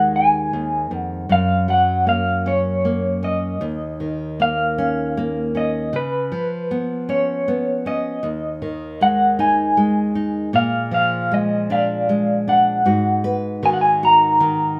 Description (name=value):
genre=acoustic folk-pop ballad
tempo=52 BPM (dotted quarters)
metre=6/8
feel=straight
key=Eb minor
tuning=A4 = 440 Hz
part: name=electric guitar through a small old amp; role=melody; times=0.0-14.8 s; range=Cb5 to Bb5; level=-21 LUFS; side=equal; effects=tremolo
part: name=nylon-string guitar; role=accompaniment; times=0.0-14.8 s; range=Eb2 to Cb5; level=-24 LUFS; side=equal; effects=none
part: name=felt-muted upright piano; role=arpeggios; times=13.6-14.4 s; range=Gb4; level=-32 LUFS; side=equal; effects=none
room=moderate studio reverb, RT60 0.8 s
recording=none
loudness=-19 LUFS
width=mono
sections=0.0-12.9 A section; 12.9-14.8 B section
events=none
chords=0.0 Ebsus4; 1.3 Gb; 3.6 Eb5; 5.9 Db7; 8.2 Ebsus4; 10.5 Bb7; 12.9 Abm7